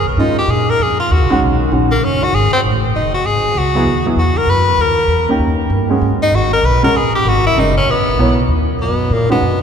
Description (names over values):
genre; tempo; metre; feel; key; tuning
jazz, small-group swing and bop; 195 BPM; 4/4; swing 62% on 8ths; G# minor; A4 = 437 Hz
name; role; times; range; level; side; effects
edgy tenor saxophone; melody; 0.0-9.6 s; A#3 to B4; -15 LUFS; left 2 dB; none
upright bass; bass; 0.0-9.6 s; F#1 to A#2; -16 LUFS; equal; none
warm baby grand piano; accompaniment; 0.2-9.4 s; Eb3 to C#5; -18 LUFS; right 1 dB; none
bright trombone; second line; 8.8-9.6 s; A#2 to B2; -21 LUFS; right 2 dB; none
room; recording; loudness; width
wet cathedral reverb, RT60 4.5 s; recorded in a church or concert hall; -12 LUFS; side -7 dB against mid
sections
0.0-8.5 A section; 8.5-9.6 B section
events
tenor saxophone solo 0.0-8.5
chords
0.5 A#5; 1.1 D#m7; 2.3 F#madd9; 3.6 C#m11; 4.8 D#7; 6.0 G#m9; 8.5 G#m9 (rootless)